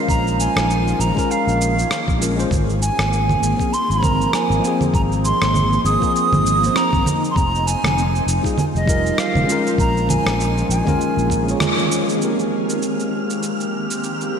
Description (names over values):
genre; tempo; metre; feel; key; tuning
sunset chillout; 99 BPM; 4/4; swing 58% on 16ths; Ab major; A4 = 439 Hz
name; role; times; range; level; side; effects
tine electric piano; accompaniment; 0.0-14.4 s; F3 to Db5; -23 LUFS; moving between left 4 dB and right 4 dB; auto-pan, low-pass filter, digital delay
shimmering ambient pad; sustained chords; 0.0-14.4 s; Eb3 to C5; -25 LUFS; equal; chorus, built-in reverb, phaser
bright baroque flute; melody; 0.1-11.6 s; Eb5 to Eb6; -21 LUFS; right 1 dB; digital delay
sustaining fretless electric bass; bass; 0.1-11.5 s; F1 to Bb1; -21 LUFS; left 1 dB; none
electronic cabasa, rim click and congas; drums; 0.1-14.3 s; none; -24 LUFS; right 2 dB; none
electronic kick drum; drums; 0.1-11.4 s; none; -22 LUFS; left 1 dB; none
wind-like tuned noise texture; texture; 12.5-14.4 s; F6; -31 LUFS; right 1 dB; built-in reverb
room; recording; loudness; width
wet lush hall reverb, RT60 2.5 s; bright 1980s-style digital production; -16 LUFS; side -7 dB against mid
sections
0.0-12.2 A section; 12.2-14.4 B section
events
band accent 11.6-11.9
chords
0.1 Bbm7; 2.5 Ab69; 7.4 Fm9; 9.8 Bbm7; 12.2 Abmaj9